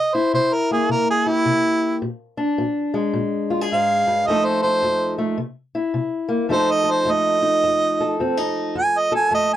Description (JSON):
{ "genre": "acoustic country blues, solo or duo", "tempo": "107 BPM", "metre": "4/4", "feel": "swing 63% on 8ths", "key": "F mixolydian", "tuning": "A4 = 439 Hz", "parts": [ { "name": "warm harmonica", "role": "melody", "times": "0.0-9.6 s", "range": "E4 to Ab5", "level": "-18 LUFS", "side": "right 2 dB", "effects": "none" }, { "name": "fingerpicked steel-string acoustic guitar", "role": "accompaniment", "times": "0.0-9.6 s", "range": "F2 to A4", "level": "-22 LUFS", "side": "left 2 dB", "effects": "none" } ], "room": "light reverb", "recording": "dry, close 1970s-style studio recording", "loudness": "-18 LUFS", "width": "side -12 dB against mid", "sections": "0.0-6.5 A section; 6.5-9.6 B section", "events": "harmonica solo 6.5-9.6", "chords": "0.0 C7; 2.0 Bb7; 4.3 F7; 5.4 C7; 6.5 F7" }